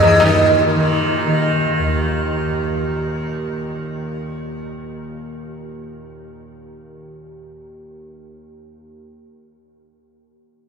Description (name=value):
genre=indian classical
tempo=170 BPM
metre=3/4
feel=straight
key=unclear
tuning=A4 = 439 Hz
part: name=sitar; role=melody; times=0.0-1.2 s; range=Eb3 to Fb3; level=-18 LUFS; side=equal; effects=ping-pong delay
part: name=tanpura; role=drone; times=0.0-8.9 s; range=Eb2 to Eb3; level=-22 LUFS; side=right 1 dB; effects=stereo widening
room=wet huge ambient reverb, RT60 7.5 s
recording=dreamy mix soaked in reverb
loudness=-16 LUFS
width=side -6 dB against mid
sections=0.2-2.3 A section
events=none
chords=none